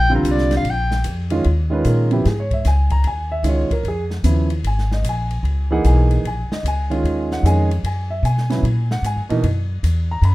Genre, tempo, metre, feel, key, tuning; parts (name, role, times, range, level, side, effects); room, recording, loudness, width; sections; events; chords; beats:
modal jazz; 150 BPM; 4/4; swing 65% on 8ths; A4 = 440 Hz
warm soprano saxophone; melody; 0.0-1.1 s; A#4 to G5; -21 LUFS; equal
upright bass; bass; 0.0-10.3 s; Ab1 to Cb3; -18 LUFS; equal
warm grand piano; accompaniment; 0.1-10.3 s; Cb3 to Cb6; -21 LUFS; right 2 dB
open jazz drum kit; drums; 0.2-10.3 s; hi-hat, kick drum, ride cymbal, snare drum; -31 LUFS; left 1 dB
studio reverb; rough home demo mix; -16 LUFS; side -18 dB against mid
0.0-1.4 A section; 1.4-10.3 A section
soprano saxophone solo 0.0-1.4
0.0 A#; 1.4 Eb9sus4; 7.8 Gb9sus4
0.25 0.65 1.05 | 1.45 1.85 2.25 2.65 | 3.05 3.45 3.85 4.25 | 4.65 5.05 5.45 5.84 | 6.25 6.64 7.04 7.44 | 7.84 8.24 8.64 9.04 | 9.44 9.84 10.24